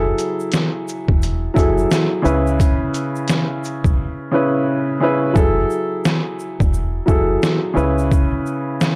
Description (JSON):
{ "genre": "hip hop, boom-bap hip-hop", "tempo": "87 BPM", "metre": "4/4", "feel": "swing 62% on 16ths", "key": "F# minor", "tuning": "A4 = 438 Hz", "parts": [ { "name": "dark upright piano", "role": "accompaniment", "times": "0.0-9.0 s", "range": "C#3 to B4", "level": "-21 LUFS", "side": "equal", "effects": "cassette tape, high-pass filter, low-pass filter" }, { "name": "deep dub fingered electric bass", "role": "bass", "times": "0.0-8.3 s", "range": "E1 to C#2", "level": "-24 LUFS", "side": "equal", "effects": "none" }, { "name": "trip hop sampler-style drum kit", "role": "drums", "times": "0.2-9.0 s", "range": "hi-hat, kick drum, shaker, snare drum", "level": "-20 LUFS", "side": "equal", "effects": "overdrive" }, { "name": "egg shaker", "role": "percussion", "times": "0.2-9.0 s", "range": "none", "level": "-44 LUFS", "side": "equal", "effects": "none" } ], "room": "light reverb, digital ambience", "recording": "dry, gritty hardware recording", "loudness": "-18 LUFS", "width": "mono", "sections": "0.0-5.4 A section; 5.4-9.0 B section", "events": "drums muted 4.0-5.4; hi-hats muted 5.4-9.0", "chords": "0.0 F#m9; 2.3 C#m7; 5.4 F#m9; 7.8 C#m7" }